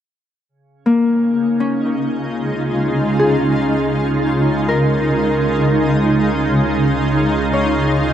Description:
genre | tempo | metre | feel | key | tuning
ambient | free time | none | none | Db major | A4 = 440 Hz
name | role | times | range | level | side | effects
shimmering ambient pad | sustained chords | 1.4-8.1 s | Db3 to F4 | -16 LUFS | right 1 dB | chorus, built-in reverb
deep rumbling drone | bass | 2.5-8.1 s | Db2 | -31 LUFS | equal | built-in reverb
Celtic harp | arpeggios | 0.9-8.1 s | Bb3 to Db5 | -20 LUFS | left 2 dB | diffuse ambient delay
room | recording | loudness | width
wet huge ambient reverb, RT60 7.9 s | dark, warm production | -14 LUFS | side -10 dB against mid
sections
0.5-8.1 A section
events
fade-in on synth drone 0.5-8.1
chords
0.5 Db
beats
free time

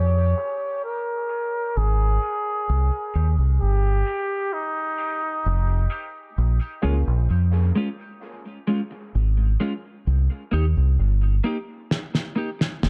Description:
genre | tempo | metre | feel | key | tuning
dub reggae | 65 BPM | 4/4 | straight | Bb dorian | A4 = 443 Hz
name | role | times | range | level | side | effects
breathy trumpet | melody | 0.0-5.9 s | Eb4 to Db5 | -29 LUFS | equal | low-pass filter, dub echo
deep dub fingered electric bass | bass | 0.0-12.9 s | F1 to F2 | -21 LUFS | equal | none
clean electric guitar | accompaniment | 0.4-12.6 s | Ab3 to G4 | -31 LUFS | equal | lush chorus, high-pass filter, low-pass filter, dub echo
warm upright piano | stabs | 0.4-7.0 s | Bb3 to Ab4 | -40 LUFS | equal | high-pass filter, low-pass filter, dub echo
snare drum | drums | 11.9-12.9 s | none | -25 LUFS | equal | none
room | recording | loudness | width
light reverb, studio reverb | none | -23 LUFS | mono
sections
0.0-12.9 A section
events
filter sweep 0.0-12.9; drum fill 11.9-12.9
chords
0.0 Bbm7; 2.7 Cm7; 6.4 Bbm7; 10.1 Cm7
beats
0.83 1.76 | 2.68 3.60 4.52 5.45 | 6.37 7.29 8.21 9.14 | 10.06 10.98 11.90 12.82

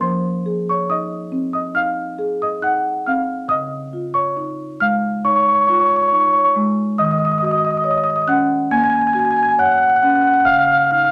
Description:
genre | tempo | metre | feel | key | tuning
classical, contemporary piece for solo marimba | 69 BPM | 4/4 | rubato | Db major | A4 = 442 Hz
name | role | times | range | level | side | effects
marimba with soft mallets | solo | 0.0-11.1 s | Db3 to Ab6 | -17 LUFS | equal | none
room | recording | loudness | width
wet stone room reverb, RT60 0.9 s | none | -17 LUFS | mono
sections
0.0-11.1 A section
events
none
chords
0.0 Fm7; 3.5 Dbadd9; 7.0 Ebm7; 10.5 Dbadd9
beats
| 0.02 0.89 1.76 2.62 | 3.49 4.37 5.25 6.11 | 6.99 7.86 8.72 9.59 | 10.47

